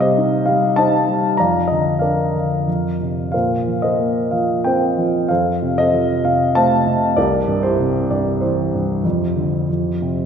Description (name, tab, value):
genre	classical, lyrical solo piano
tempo	94 BPM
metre	3/4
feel	uneven beats, rubato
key	Bb major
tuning	A4 = 440 Hz
part	dark baby grand piano	solo	0.0-10.3 s	C2 to Bb5	-15 LUFS	equal	none
room	wet concert hall reverb, RT60 2.2 s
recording	heard from further back in the room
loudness	-15 LUFS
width	side -7 dB against mid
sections	0.0-10.3 A section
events	grand piano fill 10.0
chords	0.0 Cm; 1.4 Bb/F; 2.7 F5; 3.3 Bbsus2; 5.3 F; 7.2 C7; 9.0 Dm11/F; 9.7 F5